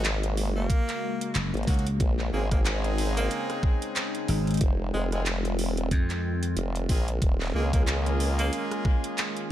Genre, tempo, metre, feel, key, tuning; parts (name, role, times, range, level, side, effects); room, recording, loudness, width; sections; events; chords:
glitch hop; 92 BPM; 4/4; swing 58% on 16ths; Bb minor; A4 = 440 Hz
warbly tape-like pad; sustained chords; 0.0-9.5 s; Db3 to C5; -34 LUFS; left 1 dB; chorus, built-in reverb, phaser, sidechain pumping
bright horn section; stabs; 0.0-9.5 s; Gb3 to Ab4; -35 LUFS; equal; sidechain pumping, ping-pong delay
formant-sweep wobble bass; bass; 0.0-8.5 s; Eb1 to Db2; -27 LUFS; equal; chorus
dubstep drum kit; drums; 0.0-9.5 s; handclaps, hi-hat, rim click; -33 LUFS; right 1 dB
breathy tenor saxophone; melody; 0.6-8.7 s; Ab3 to Bb3; -36 LUFS; equal; ping-pong delay
electronic kick drum; drums; 0.7-9.0 s; -24 LUFS; equal
slap bass; bass; 1.4-6.5 s; Gb1 to F2; -27 LUFS; equal
little or no reverb; -24 LUFS; side -12 dB against mid
0.0-9.5 A section
0.0 Ab9sus4; 2.0 Bbm11; 4.6 Fm7; 7.2 Eb9sus4